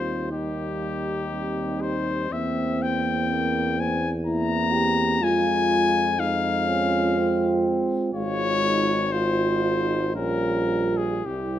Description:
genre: classical, hymn-like piece for brass band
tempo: 54-64 BPM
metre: 3/4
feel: rubato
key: F minor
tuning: A4 = 441 Hz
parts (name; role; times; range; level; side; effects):
- clear cornet; melody; 0.0-11.6 s; G4 to Bb5; -25 LUFS; left 5 dB; none
- mellow French horn section; second line; 0.0-11.6 s; Bb3 to F4; -28 LUFS; right 4 dB; none
- dark euphonium; accompaniment; 0.0-11.6 s; G3 to Bb3; -30 LUFS; right 5 dB; none
- warm euphonium; accompaniment; 0.0-11.6 s; Bb3 to G4; -30 LUFS; left 1 dB; none
- warm tuba; bass; 0.0-11.6 s; Ab1 to F2; -29 LUFS; right 1 dB; none
room: light reverb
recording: close, detailed microphones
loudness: -21 LUFS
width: side -11 dB against mid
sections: 0.0-11.6 A section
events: none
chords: 0.0 Cm/Eb; 2.3 C7/E; 5.2 Fm; 8.1 Fm/Ab; 10.2 Gm7b5/Bb

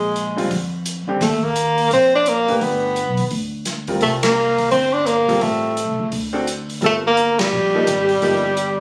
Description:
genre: jazz, small-group swing and bop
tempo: 171 BPM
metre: 4/4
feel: swing 63% on 8ths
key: G minor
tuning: A4 = 440 Hz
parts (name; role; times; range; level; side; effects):
- breathy tenor saxophone; melody; 0.0-8.8 s; G3 to D4; -20 LUFS; equal; none
- mellow alto saxophone; second line; 0.0-8.8 s; G4 to D5; -28 LUFS; equal; none
- upright bass; bass; 0.0-8.8 s; F#1 to F2; -29 LUFS; equal; none
- open jazz drum kit; drums; 0.2-8.7 s; hi-hat, kick drum, ride cymbal, snare drum; -31 LUFS; equal; none
- clear grand piano; accompaniment; 0.4-8.4 s; D3 to B4; -26 LUFS; equal; none
room: moderate studio reverb, RT60 0.5 s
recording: recorded on a phone in the room, studio ambience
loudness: -19 LUFS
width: mono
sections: 0.0-8.8 A section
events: band accent 4.2, 7.3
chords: 0.0 Bb7; 1.2 Ebmaj7(no3); 2.6 G; 4.0 C5; 5.4 A7alt; 6.1 D7; 6.8 Gm9

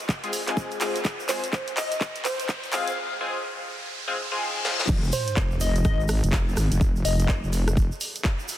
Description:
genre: bass house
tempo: 125 BPM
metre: 4/4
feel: swing 61% on 16ths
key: F minor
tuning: A4 = 443 Hz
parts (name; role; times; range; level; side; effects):
- garage drum kit; drums; 0.0-8.6 s; crash cymbal, handclaps, hi-hat, rim click, snare drum; -30 LUFS; equal; high-pass filter on hats, soft clipping on snare, high-pass filter on snare, high-pass filter on cymbals
- egg shaker; percussion; 0.0-8.6 s; none; -38 LUFS; right 5 dB; none
- riser, reverse cymbal and sub drop; sound effects; 0.0-6.8 s; none; -34 LUFS; left 1 dB; none
- electronic kick drum; drums; 0.1-8.4 s; none; -23 LUFS; equal; none
- band-passed chord stab; stabs; 0.2-4.8 s; Ab3 to Ab4; -30 LUFS; left 2 dB; chorus, phaser, sidechain pumping, tape echo
- glassy wavetable pluck; melody; 1.3-7.3 s; C5 to F5; -32 LUFS; left 1 dB; chorus, tape echo
- wobble bass; bass; 4.9-7.9 s; F1 to Ab1; -23 LUFS; equal; chorus, overdrive, sidechain pumping
room: light reverb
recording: dense, heavily limited modern master, high-pass filter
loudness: -23 LUFS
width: side -12 dB against mid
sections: 0.0-4.9 A section; 4.9-8.6 B section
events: build-up 0.0-4.9; drum fill 0.0-3.0, 4.6; riser 0.0-4.9; filter sweep 0.0-4.9; reverse cymbal 3.9-4.9; drop 4.9-8.6; impact 4.9-6.8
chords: 0.0 Fm

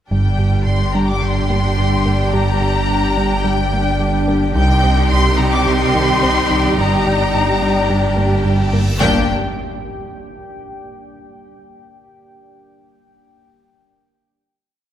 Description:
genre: cinematic, hybrid orchestral and electronic film score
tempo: 108 BPM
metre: 4/4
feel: straight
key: G minor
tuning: A4 = 438 Hz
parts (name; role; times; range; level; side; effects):
- warm symphonic violin section; melody; 0.1-9.3 s; G5 to D6; -21 LUFS; left 2 dB; none
- rich symphonic violin section; second line; 0.1-9.3 s; G4 to G5; -23 LUFS; left 1 dB; none
- rich symphonic viola section; accompaniment; 0.1-9.3 s; G3 to Eb4; -24 LUFS; right 2 dB; none
- deep dark ambient pad; sustained chords; 1.2-9.3 s; G3 to G5; -26 LUFS; left 1 dB; chorus, built-in reverb
- mellow French horn section; sustained chords; 0.1-9.2 s; G3 to D5; -26 LUFS; left 4 dB; none
- analog pluck; arpeggios; 0.1-8.9 s; C3 to G4; -28 LUFS; left 1 dB; none
- smooth synth bass; riff; 0.1-8.9 s; C2 to G3; -20 LUFS; right 1 dB; none
- rich symphonic cello section; bass; 0.1-9.3 s; G2 to C3; -23 LUFS; right 2 dB; none
- rich symphonic double bass section; bass; 0.1-9.3 s; G1 to C2; -24 LUFS; right 2 dB; none
- saturated sub bass; bass; 0.1-9.3 s; G1 to C2; -22 LUFS; equal; none
- reverse cymbal and impact; sound effects; 8.6-11.2 s; none; -27 LUFS; equal; none
room: moderate scoring stage reverb, RT60 1.6 s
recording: none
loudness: -13 LUFS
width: side -10 dB against mid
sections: 0.1-9.0 theme; 9.0-11.2 final chord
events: reverse cymbal 8.6-9.0; impact 9.0-11.2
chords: 0.1 Gm; 4.6 Cm; 6.8 Gm

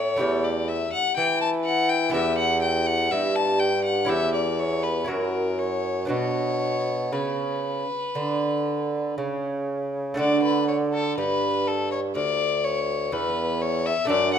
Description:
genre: classical, baroque-style sonata movement with continuo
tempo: 60 BPM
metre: 4/4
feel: uneven beats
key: B minor, D major from 10.2 s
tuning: A4 = 440 Hz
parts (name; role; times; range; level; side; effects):
- warm violin; melody; 0.0-14.4 s; A4 to A5; -25 LUFS; left 4 dB; none
- lute; accompaniment; 0.0-14.4 s; D2 to A4; -28 LUFS; right 2 dB; none
- clear bassoon; bass; 0.0-14.4 s; D2 to E3; -27 LUFS; right 2 dB; none
room: moderate recital hall reverb, RT60 1.3 s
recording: none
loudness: -22 LUFS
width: side -8 dB against mid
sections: 0.0-10.2 A section; 10.2-14.4 A section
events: none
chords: 0.2 A5/E; 2.1 Em; 4.1 C#dim/E; 5.1 F#7; 6.1 Bm; 10.2 D

